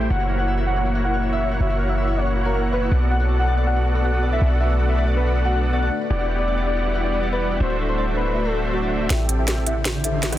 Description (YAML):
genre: future bass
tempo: 160 BPM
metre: 4/4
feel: half-time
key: unclear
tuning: A4 = 442 Hz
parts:
  - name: ethereal airy pad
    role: sustained chords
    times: 0.0-10.4 s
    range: G3 to F#5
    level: -32 LUFS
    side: right 1 dB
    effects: ensemble chorus, built-in reverb, tremolo
  - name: concert harp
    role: arpeggios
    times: 0.0-10.4 s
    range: F#4 to A#5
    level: -31 LUFS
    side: left 6 dB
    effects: low-pass filter, dub echo
  - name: dense compressed supersaw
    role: riff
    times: 0.0-10.4 s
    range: A3 to G5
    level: -25 LUFS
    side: equal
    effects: low-pass filter
  - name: warm 808-style bass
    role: bass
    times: 0.0-10.4 s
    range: D1 to B1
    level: -22 LUFS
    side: equal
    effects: none
  - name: soft octave-layered synth lead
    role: melody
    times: 0.1-10.4 s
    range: F#4 to F#5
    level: -26 LUFS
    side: left 1 dB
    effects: chorus, tape echo
  - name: trap drum kit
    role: drums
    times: 9.1-10.4 s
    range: hi-hat, snare drum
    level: -25 LUFS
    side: right 1 dB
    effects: high-pass filter on snare, high-pass filter on hats
  - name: riser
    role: sound effects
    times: 9.7-10.4 s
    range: none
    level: -29 LUFS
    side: left 1 dB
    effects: none
room: little or no reverb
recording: dense, heavily limited modern master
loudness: -18 LUFS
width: side -13 dB against mid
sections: 0.0-9.1 A section; 9.1-10.4 B section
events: build-up 9.1-10.4; drum fill 9.1-10.4; filter sweep on supersaw synth 9.1-10.4; filter sweep on soft synth lead 9.1-10.4; filter sweep on harp 9.1-10.4; riser 9.7-10.4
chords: 0.1 F#7; 2.9 Bm7; 6.1 Em9; 7.6 D9; 9.1 Am7